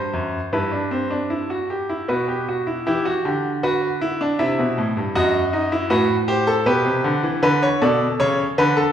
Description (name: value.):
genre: classical, baroque-style 3-part fugue for grand piano.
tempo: 78 BPM.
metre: 3/4.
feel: straight.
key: E minor.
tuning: A4 = 440 Hz.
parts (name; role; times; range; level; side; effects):
bright concert grand piano; solo; 0.0-8.9 s; F#2 to E5; -18 LUFS; equal; none.
room: wet recital hall reverb, RT60 1.3 s.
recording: heard from further back in the room.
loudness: -18 LUFS.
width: side -9 dB against mid.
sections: 0.0-2.9 A section; 2.9-8.9 B section.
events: none.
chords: 0.0 F#(b5, no3); 0.5 Em/G; 2.1 B5; 2.9 Em; 4.4 G69; 5.2 D#dim7/F#; 6.7 Em/B; 7.4 Bm.